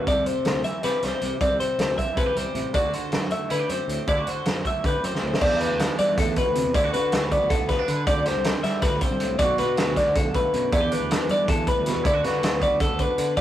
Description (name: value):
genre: math rock and midwest emo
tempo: 316 BPM (eighths)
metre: 7/8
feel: straight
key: unclear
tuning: A4 = 440 Hz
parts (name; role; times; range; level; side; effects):
- twangy electric guitar; accompaniment; 0.0-13.4 s; E2 to G4; -29 LUFS; right 5 dB; none
- twelve-string electric guitar; arpeggios; 0.0-13.4 s; A4 to E5; -24 LUFS; left 2 dB; none
- fuzz fingered electric bass; bass; 0.1-13.4 s; A1 to D3; -30 LUFS; equal; overdrive
- loose indie drum kit; drums; 0.1-13.4 s; crash cymbal, hi-hat, kick drum, snare drum; -26 LUFS; equal; none
room: light reverb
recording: rough rehearsal-room recording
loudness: -21 LUFS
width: side -12 dB against mid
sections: 0.0-5.4 A section; 5.4-13.4 B section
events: drum fill 5.1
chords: 0.1 Am7/C; 2.7 D7; 5.4 Em7; 6.7 Bm7/D; 8.1 D7sus4; 9.4 Bm7; 10.7 Em7; 12.0 Bm7/D